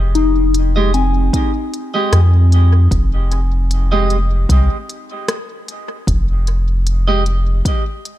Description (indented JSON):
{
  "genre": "ambient dub",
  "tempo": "76 BPM",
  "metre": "4/4",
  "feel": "swing 55% on 16ths",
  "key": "F minor",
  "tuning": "A4 = 440 Hz",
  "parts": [
    { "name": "soft dub sub bass", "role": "bass", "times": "0.0-7.6 s", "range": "F1 to F2", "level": "-13 LUFS", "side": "equal", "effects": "tube saturation" },
    { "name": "soft synth bell", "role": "arpeggios", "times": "0.1-8.2 s", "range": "C4 to Ab5", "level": "-21 LUFS", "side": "left 4 dB", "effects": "chorus, phaser, tape echo" },
    { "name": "organic electronic drum kit", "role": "drums", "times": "0.2-8.2 s", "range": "hi-hat, rim click", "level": "-25 LUFS", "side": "left 1 dB", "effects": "overdrive, studio reverb, dub echo" },
    { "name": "clean electric guitar", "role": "stabs", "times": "0.8-7.2 s", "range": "Ab3 to Eb5", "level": "-22 LUFS", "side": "right 3 dB", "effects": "dub echo" },
    { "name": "electronic kick drum", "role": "drums", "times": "1.3-7.8 s", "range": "none", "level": "-18 LUFS", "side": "equal", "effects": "overdrive, studio reverb" }
  ],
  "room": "little or no reverb",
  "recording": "none",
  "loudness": "-13 LUFS",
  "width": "side -14 dB against mid",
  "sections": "0.0-8.2 A section",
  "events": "none",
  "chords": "0.0 Fm7"
}